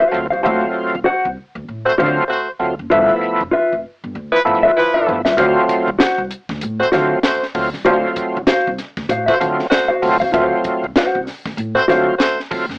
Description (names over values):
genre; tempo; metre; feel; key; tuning
funk; 97 BPM; 4/4; swing 60% on 16ths; D mixolydian; A4 = 440 Hz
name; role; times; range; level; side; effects
warm horn section; second line; 0.0-12.4 s; F3 to C5; -16 LUFS; equal; none
mellow electric guitar; accompaniment; 0.0-12.1 s; F4 to F#5; -15 LUFS; left 1 dB; lush chorus
overdriven tonewheel organ; stabs; 0.1-12.7 s; F3 to E#4; -16 LUFS; right 1 dB; chorus vibrato, slow rotary speaker
upright bass; bass; 0.1-12.8 s; F1 to D3; -25 LUFS; equal; none
compact cocktail drum kit; drums; 5.3-12.8 s; hi-hat, kick drum, snare drum; -20 LUFS; equal; none
room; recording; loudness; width
light reverb; rough home demo mix, AM radio sound; -14 LUFS; side -24 dB against mid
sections
0.0-12.8 A section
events
drum fill 4.1-5.4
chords
0.0 D7#9; 2.9 G13; 5.4 D7#9